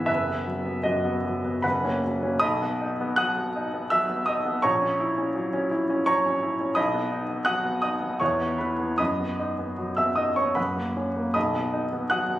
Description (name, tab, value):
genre	classical, romantic character piece for solo piano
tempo	73-87 BPM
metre	3/4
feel	rubato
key	B major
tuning	A4 = 440 Hz
part	clear grand piano	solo	0.0-12.4 s	F#1 to F#6	-23 LUFS	equal	none
room	wet recital hall reverb, RT60 1.6 s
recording	recorded on a phone in the room, studio reverb, compression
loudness	-23 LUFS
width	side -14 dB against mid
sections	0.0-2.4 A section; 2.4-12.4 B section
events	none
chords	0.1 B/F#; 1.6 F#; 2.4 B; 4.6 F#7/A#; 6.8 B; 8.2 E5; 9.0 B/F#; 10.6 F#; 11.4 B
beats	| 0.09 0.84 1.64 | 2.41 3.18 3.91 | 4.64 5.36 6.07 | 6.77 7.47 8.21 | 8.99 9.78 10.57 | 11.35 12.11